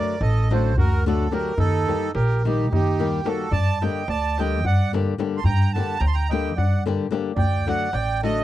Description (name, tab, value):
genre	balkan folk, Balkan wedding band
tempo	217 BPM (eighths)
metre	7/8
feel	straight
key	unclear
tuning	A4 = 440 Hz
part	accordion	melody	0.0-8.4 s	G4 to C6	-26 LUFS	right 4 dB	none
part	mellow trumpet	second line	0.0-8.4 s	Eb4 to A5	-30 LUFS	right 9 dB	none
part	flamenco guitar	accompaniment	0.0-8.4 s	D3 to G4	-25 LUFS	left 7 dB	none
part	darbuka	percussion	0.1-8.4 s	none	-25 LUFS	left 1 dB	none
part	upright bass	bass	0.2-8.4 s	A1 to G2	-23 LUFS	equal	none
room	little or no reverb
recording	dry, close 1970s-style studio recording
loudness	-19 LUFS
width	side -14 dB against mid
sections	0.0-8.4 A section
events	none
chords	0.0 D; 1.6 Eb; 3.5 Gm; 7.4 D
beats	0.19 0.47 0.74 1.02 1.30 | 1.57 1.85 2.13 2.40 2.68 2.96 3.23 | 3.51 3.79 4.06 4.34 4.62 4.89 5.17 | 5.44 5.72 5.99 6.27 6.54 6.82 7.09 | 7.37 7.64 7.92 8.19